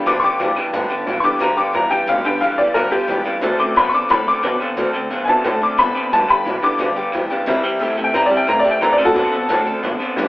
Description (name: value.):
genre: rockabilly.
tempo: 178 BPM.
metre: 4/4.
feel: straight.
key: G major.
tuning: A4 = 439 Hz.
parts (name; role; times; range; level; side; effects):
picked steel-string acoustic guitar; accompaniment; 0.0-10.3 s; G2 to A4; -23 LUFS; left 1 dB; none.
tack piano; accompaniment; 0.0-10.3 s; D3 to D6; -16 LUFS; left 1 dB; none.
electric guitar through a small old amp; riff; 0.0-10.3 s; G2 to B3; -23 LUFS; equal; harmonic tremolo.
upright bass; bass; 0.0-10.3 s; F#1 to B2; -24 LUFS; equal; none.
room: moderate stone room reverb, RT60 1.1 s.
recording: band playing live in one room, telephone sound.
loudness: -15 LUFS.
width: side -18 dB against mid.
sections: 0.7-10.3 A section.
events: honky-tonk piano solo 0.0-10.3.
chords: 0.0 G; 3.4 D7; 6.1 G; 7.5 C; 8.8 D7.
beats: 0.07 0.40 | 0.74 1.07 1.41 1.75 | 2.08 2.42 2.75 3.09 | 3.43 3.77 4.10 4.44 | 4.77 5.11 5.45 5.78 | 6.12 6.46 6.79 7.13 | 7.47 7.80 8.14 8.48 | 8.81 9.15 9.49 9.83 | 10.16.